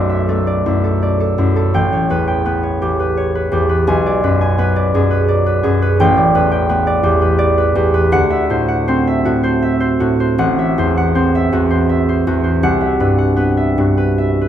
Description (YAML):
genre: classical, solo harp piece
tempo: 83 BPM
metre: 3/4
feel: uneven beats, rubato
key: unclear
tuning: A4 = 440 Hz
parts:
  - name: concert harp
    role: solo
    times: 0.0-14.5 s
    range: A1 to G#5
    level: -13 LUFS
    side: equal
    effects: none
room: wet recital hall reverb, RT60 1.4 s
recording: none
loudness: -13 LUFS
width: side -10 dB against mid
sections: 0.0-14.5 A section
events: none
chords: 0.0 Bm7; 1.7 A9; 3.9 Bm6; 6.0 A9sus4; 8.1 D9; 10.4 Am6; 12.6 Cmaj7#11